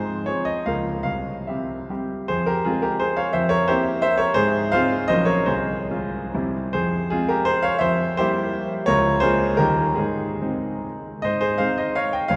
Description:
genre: classical, romantic triple-time dance for piano with dotted rhythms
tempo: 134-184 BPM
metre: 3/4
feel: rubato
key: F minor, Ab major from 8.9 s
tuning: A4 = 439 Hz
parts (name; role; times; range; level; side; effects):
- warm grand piano; solo; 0.0-12.4 s; Bb1 to G5; -22 LUFS; equal; none
room: wet cathedral reverb, RT60 4.4 s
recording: recorded in a church or concert hall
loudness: -22 LUFS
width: mono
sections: 0.0-2.3 A section; 2.3-11.2 B section; 11.2-12.4 C section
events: none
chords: 0.0 Fm/Ab; 0.7 Bbm/Db; 1.0 C; 2.3 Fm; 3.3 C7/F; 4.4 Fm/Ab; 5.1 Gb/Bb; 5.5 Fm/C; 6.3 C; 6.7 Fm; 7.8 C7/F; 8.9 Bbm7/Db; 9.6 Eb; 10.0 Ab

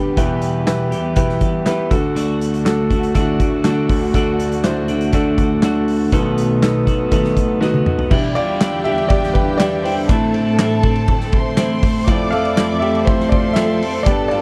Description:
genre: piano-driven pop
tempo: 121 BPM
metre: 4/4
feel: straight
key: E phrygian from 8.1 s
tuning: A4 = 440 Hz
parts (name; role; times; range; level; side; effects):
- clear grand piano; accompaniment; 0.0-14.4 s; B1 to F5; -22 LUFS; equal; none
- warm studio string section; sustained chords; 0.0-14.4 s; D2 to A4; -27 LUFS; equal; none
- twelve-string electric guitar; riff; 0.0-14.4 s; E2 to A4; -23 LUFS; equal; lush chorus
- loose indie drum kit; drums; 0.2-14.4 s; crash cymbal, handclaps, hi-hat, kick drum, ride cymbal, snare drum, toms; -22 LUFS; equal; none
- warm studio violin section; second line; 8.1-14.4 s; G4 to D6; -26 LUFS; equal; none
room: light reverb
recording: none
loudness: -17 LUFS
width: mono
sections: 0.0-8.1 A section; 8.1-14.4 B section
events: drum fill 7.6-8.1; grand piano solo 8.1-14.4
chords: 0.2 Em; 1.9 D; 6.1 B7; 8.1 Em7; 10.1 Am; 12.1 Fmaj7

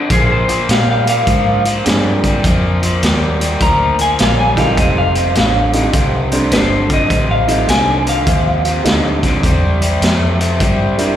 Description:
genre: electric blues shuffle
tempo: 103 BPM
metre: 4/4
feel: swing 65% on 8ths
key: F mixolydian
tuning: A4 = 440 Hz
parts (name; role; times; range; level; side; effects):
- raw garage guitar; riff; 0.0-11.2 s; F2 to A3; -18 LUFS; left 2 dB; overdrive, slapback echo
- electric guitar through a small old amp; melody; 0.1-9.4 s; Ab4 to Bb5; -17 LUFS; left 1 dB; slapback echo
- vintage muted fingered electric bass; bass; 0.1-11.0 s; F1 to Bb2; -17 LUFS; equal; none
- raw garage drum kit; drums; 0.1-11.1 s; hi-hat, kick drum, snare drum; -17 LUFS; equal; none
- warm upright piano; accompaniment; 1.8-11.2 s; F3 to Bb4; -20 LUFS; right 3 dB; none
room: little or no reverb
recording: live gig heard through the venue's PA, recital hall reverb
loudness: -11 LUFS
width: side -10 dB against mid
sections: 0.0-11.2 A section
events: none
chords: 0.1 Bb7; 4.8 F7; 9.4 C

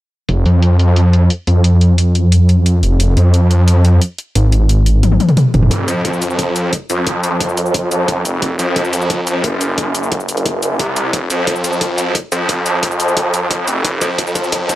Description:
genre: dark technical drum and bass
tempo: 177 BPM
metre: 4/4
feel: straight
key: F phrygian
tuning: A4 = 444 Hz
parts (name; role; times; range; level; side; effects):
- snarling distorted saw bass; bass; 0.3-14.8 s; F1 to F2; -12 LUFS; equal; distortion, tube saturation, high-pass filter
- drum and bass drum kit; drums; 0.3-14.8 s; cabasa, hi-hat, toms; -18 LUFS; left 1 dB; overdrive, low-pass filter on hats, low-pass filter on toms, low-pass filter on perc
- electronic kick drum; drums; 5.7-14.8 s; none; -23 LUFS; left 1 dB; high-pass filter on kick, high-pass filter on room
room: little or no reverb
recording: dark, warm production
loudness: -12 LUFS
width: side -16 dB against mid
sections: 0.3-5.7 A section; 5.7-14.8 B section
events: filter sweep on drum 0.3-5.7; drum fill 5.0-5.7, 11.1-14.8; build-up 5.7-14.8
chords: none

